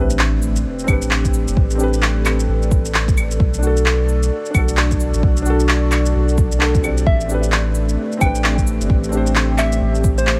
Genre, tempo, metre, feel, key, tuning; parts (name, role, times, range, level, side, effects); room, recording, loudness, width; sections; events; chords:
future garage; 131 BPM; 4/4; swing 61% on 16ths; A minor; A4 = 444 Hz
felt-muted upright piano; accompaniment; 0.0-10.4 s; C4 to D5; -27 LUFS; equal; sidechain pumping, dub echo
dark analog pad; sustained chords; 0.0-10.4 s; A3 to E5; -26 LUFS; equal; chorus, sidechain pumping
soft dub sub bass; bass; 0.0-10.4 s; G1 to B1; -21 LUFS; equal; sidechain pumping
sub drop; sound effects; 0.0-1.6 s; -30 LUFS; equal
electronic shaker, handclaps, cabasa and claves; drums; 0.1-10.4 s; -24 LUFS; equal
electronic kick drum; drums; 0.9-10.2 s; -20 LUFS; equal
soft struck synth lead; melody; 7.1-10.4 s; C5 to G5; -26 LUFS; equal; chorus, digital delay
digital ambience; vinyl crackle; -17 LUFS; mono
0.0-10.4 A section
impact 0.0-1.6
0.0 Am11; 3.4 Bm7; 7.1 Am11